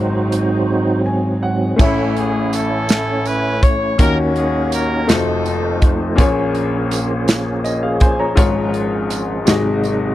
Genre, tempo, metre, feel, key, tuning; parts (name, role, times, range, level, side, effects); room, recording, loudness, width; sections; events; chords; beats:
slow gospel; 55 BPM (dotted quarters); 6/8; straight; A4 = 441 Hz
clear grand piano; accompaniment; 0.0-10.1 s; F1 to Bb5; -19 LUFS; left 2 dB
bright studio string section; sustained chords; 0.0-1.8 s; Db3 to Eb4; -31 LUFS; right 2 dB
percussive tonewheel organ; sustained chords; 0.0-10.1 s; Ab2 to C#5; -20 LUFS; right 2 dB; slow rotary speaker, overdrive, chorus vibrato
modern studio drum kit; drums; 0.3-10.0 s; crash cymbal, hi-hat, kick drum, snare drum; -15 LUFS; equal
warm horn section; melody; 1.8-6.2 s; A3 to C#5; -20 LUFS; left 1 dB
tambourine; percussion; 1.8-10.1 s; -30 LUFS; right 12 dB
little or no reverb; dry, close 1970s-style studio recording; -14 LUFS; side -14 dB against mid
0.0-1.8 A section; 1.8-10.1 B section
tonewheel organ solo 0.0-1.8; grand piano fill 0.7-1.8
0.0 Ab7; 1.8 Amaj7; 4.0 Ebm7; 5.1 F7b9; 6.2 Bbm7; 8.4 Db/Ab; 9.5 Ab7
0.70 | 1.80 2.90 | 3.99 5.09 | 6.19 7.28 | 8.38 9.47